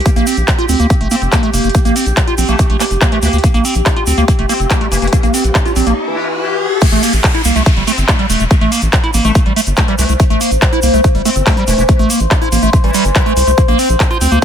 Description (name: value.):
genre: psychedelic trance.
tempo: 142 BPM.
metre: 4/4.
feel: straight.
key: A phrygian.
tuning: A4 = 438 Hz.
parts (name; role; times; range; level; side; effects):
overtone-sweeping drone; sustained chords; 0.0-14.4 s; G4 to C5; -20 LUFS; left 1 dB; chorus, built-in reverb, sidechain pumping.
techno drum kit; drums; 0.0-14.4 s; crash cymbal, handclaps, hi-hat; -19 LUFS; left 1 dB; none.
liquid acid bass; riff; 0.1-14.4 s; G3 to F4; -16 LUFS; right 2 dB; phaser, auto-pan, sidechain pumping, dub echo.
electronic kick drum; drums; 0.1-14.4 s; none; -13 LUFS; equal; none.
egg shaker; percussion; 0.1-14.4 s; none; -24 LUFS; right 4 dB; none.
round analog bass; bass; 0.2-14.4 s; E1 to D2; -15 LUFS; equal; none.
metallic wobble bass; second line; 1.1-13.4 s; E3 to C4; -25 LUFS; left 3 dB; wide subtle chorus, sidechain pumping, high-pass filter, tape echo.
riser and downlifter; sound effects; 4.7-10.2 s; none; -22 LUFS; left 2 dB; none.
room: little or no reverb.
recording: none.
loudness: -10 LUFS.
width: side -8 dB against mid.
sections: 0.0-6.8 A section; 6.8-14.4 B section.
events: riser 4.7-6.8; break 6.0-6.8; drop 6.8-14.4.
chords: 0.1 Bb5; 6.8 A5; 13.6 Bb5.